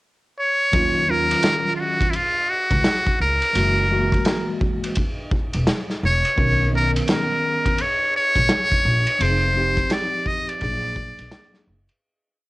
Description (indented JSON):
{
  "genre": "hip hop, jazz-hop",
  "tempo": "85 BPM",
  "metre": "4/4",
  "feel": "swing 62% on 16ths",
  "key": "Eb minor",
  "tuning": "A4 = 441 Hz",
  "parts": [
    { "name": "trumpet with metal mute", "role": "melody", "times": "0.4-11.7 s", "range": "Fb4 to Eb5", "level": "-20 LUFS", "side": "equal", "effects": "cassette tape" },
    { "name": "mellow tine electric piano", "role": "accompaniment", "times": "0.7-11.8 s", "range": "Eb3 to A#4", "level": "-26 LUFS", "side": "equal", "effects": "medium stereo tremolo, cassette tape" },
    { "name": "upright bass", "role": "bass", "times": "0.7-11.9 s", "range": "Fb1 to Eb2", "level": "-23 LUFS", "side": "equal", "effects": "none" },
    { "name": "vintage drum kit", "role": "drums", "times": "0.7-12.0 s", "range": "hi-hat, kick drum, ride cymbal, snare drum", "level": "-24 LUFS", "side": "equal", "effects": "cassette tape" }
  ],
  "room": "small room ambience",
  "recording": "home recording on cassette",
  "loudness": "-18 LUFS",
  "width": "side -20 dB against mid",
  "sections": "0.0-0.7 pickup bar; 0.7-12.0 head",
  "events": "fade-out 9.2-12.0",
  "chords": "0.0 N.C.; 0.7 Ebm9; 3.6 Gb9; 6.4 Bmaj9; 9.2 Fm7; 10.6 Bbaug7",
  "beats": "0.03 | 0.73 1.44 2.14 2.85 | 3.56 4.26 4.97 5.67 | 6.38 7.08 7.79 8.50 | 9.20 9.91 10.61 11.32"
}